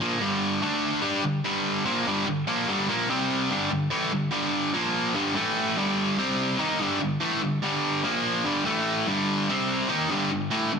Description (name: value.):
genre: rock.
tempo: 146 BPM.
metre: 4/4.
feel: straight.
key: G dorian.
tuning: A4 = 441 Hz.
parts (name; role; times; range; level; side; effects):
distorted electric guitar; solo; 0.0-10.8 s; G2 to G4; -23 LUFS; equal; overdrive.
room: wet echo chamber reverb, RT60 1.5 s.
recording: dense, heavily limited modern master.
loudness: -23 LUFS.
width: side -6 dB against mid.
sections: 0.0-3.5 A section; 3.5-10.8 B section.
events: none.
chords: 0.0 Gm; 0.6 D5; 1.0 Gm; 3.1 C5; 3.5 G5; 4.7 Bb5; 5.2 G5; 5.4 A5; 5.8 G5; 6.2 C5; 6.6 Gm; 8.0 Bb5; 8.5 G5; 8.7 A5; 9.1 G5; 9.5 C5; 9.9 Gm.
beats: | 0.21 0.62 1.03 1.45 | 1.86 2.27 2.68 3.09 | 3.50 3.91 4.33 4.74 | 5.15 5.56 5.98 6.39 | 6.80 7.22 7.63 8.04 | 8.45 8.87 9.28 9.69 | 10.10 10.52.